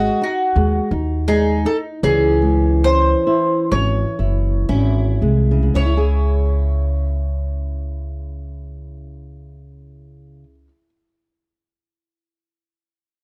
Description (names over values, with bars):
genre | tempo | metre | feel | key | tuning
fado-style ballad | 56-89 BPM | 4/4 | rubato | C# harmonic minor | A4 = 444 Hz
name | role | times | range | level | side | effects
mandolin | melody | 0.0-10.7 s | F#4 to D#5 | -23 LUFS | equal | none
picked twelve-string acoustic guitar | second line | 0.0-10.7 s | C#4 to F#4 | -31 LUFS | equal | none
nylon-string guitar | accompaniment | 0.0-10.9 s | C#3 to G#4 | -25 LUFS | equal | none
upright bass | bass | 0.0-10.7 s | F#1 to D#2 | -21 LUFS | equal | none
room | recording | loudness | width
light reverb | dry, close 1970s-style studio recording | -18 LUFS | mono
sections
0.0-5.8 A section; 5.8-10.0 B section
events
slowing down 0.0-5.8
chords
0.0 G#5; 2.0 C#m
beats
0.56 1.27 | 2.04 2.84 3.72 4.70 | 5.75 6.82 7.87 8.91